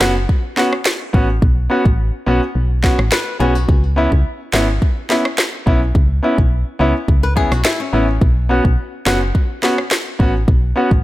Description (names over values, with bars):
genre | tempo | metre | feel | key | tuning
dancehall | 106 BPM | 4/4 | straight | unclear | A4 = 438 Hz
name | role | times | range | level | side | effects
clear concert grand piano | accompaniment | 0.0-10.9 s | B3 to F#4 | -19 LUFS | equal | sidechain pumping
solid FM bass | bass | 0.0-11.0 s | F#1 to C#2 | -17 LUFS | equal | none
afro-pop drum kit | drums | 0.0-11.0 s | kick drum, rim click, snare drum | -16 LUFS | equal | none
flamenco guitar | arpeggios | 3.1-3.8, 7.2-8.2 s | C#4 to B4 | -23 LUFS | left 5 dB | digital delay
room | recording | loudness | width
studio reverb | none | -13 LUFS | side -16 dB against mid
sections
0.0-11.0 A section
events
none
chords
0.0 Bsus2; 3.7 C#m7; 8.2 Bsus2